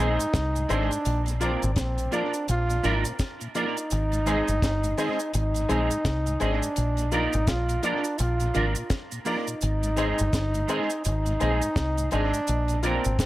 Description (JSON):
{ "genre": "roots reggae", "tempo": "84 BPM", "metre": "4/4", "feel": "swing 60% on 16ths", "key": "Ab lydian", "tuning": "A4 = 441 Hz", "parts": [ { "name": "clear trombone", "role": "melody", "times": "0.0-13.3 s", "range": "C4 to F4", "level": "-29 LUFS", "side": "right 1 dB", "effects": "tape echo" }, { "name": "clean electric guitar", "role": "accompaniment", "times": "0.0-13.0 s", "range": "Ab3 to Bb4", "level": "-32 LUFS", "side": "right 5 dB", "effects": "ensemble chorus, tape echo" }, { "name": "mellow tonewheel organ", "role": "accompaniment", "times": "0.0-13.1 s", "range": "Ab2 to D4", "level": "-35 LUFS", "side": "left 2 dB", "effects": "none" }, { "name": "warm upright piano", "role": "stabs", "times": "0.0-13.0 s", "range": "Eb4 to Eb5", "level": "-33 LUFS", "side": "left 3 dB", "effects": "none" }, { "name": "deep dub fingered electric bass", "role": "bass", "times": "0.0-13.3 s", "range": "G1 to C2", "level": "-26 LUFS", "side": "equal", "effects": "none" }, { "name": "deep reggae drum kit", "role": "drums", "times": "0.2-13.3 s", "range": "hi-hat, kick drum, snare drum", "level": "-30 LUFS", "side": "equal", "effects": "dub echo" }, { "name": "cabasa", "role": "percussion", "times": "0.2-13.3 s", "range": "none", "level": "-38 LUFS", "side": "right 7 dB", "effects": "none" } ], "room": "light reverb", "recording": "none", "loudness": "-23 LUFS", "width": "side -16 dB against mid", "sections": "0.0-13.3 A section", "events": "none", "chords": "0.0 Ab; 1.1 Bb; 3.9 Ab; 6.8 Bb; 9.6 Ab; 12.5 Bb", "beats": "0.34 | 1.05 1.77 2.48 3.19 | 3.91 4.62 5.33 6.05 | 6.76 7.48 8.19 8.90 | 9.62 10.33 11.05 11.76 | 12.48 13.19" }